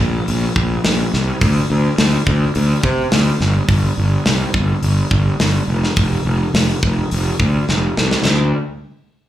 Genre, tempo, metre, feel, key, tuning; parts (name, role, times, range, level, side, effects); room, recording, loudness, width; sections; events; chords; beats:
heavy metal; 105 BPM; 4/4; straight; A4 = 437 Hz
fuzz fingered electric bass; bass; 0.0-8.5 s; F1 to C3; -16 LUFS; equal; overdrive
tight metal drum kit; drums; 0.3-8.4 s; crash cymbal, hi-hat, kick drum, snare drum; -19 LUFS; equal
little or no reverb; live gig heard through the venue's PA, club reverb; -14 LUFS; side -12 dB against mid
0.0-8.2 A section; 8.2-9.3 B section
drum fill 7.7-8.2
0.27 0.84 | 1.41 1.98 2.55 3.12 | 3.69 4.25 4.83 5.39 | 5.96 6.53 7.10 7.67 | 8.24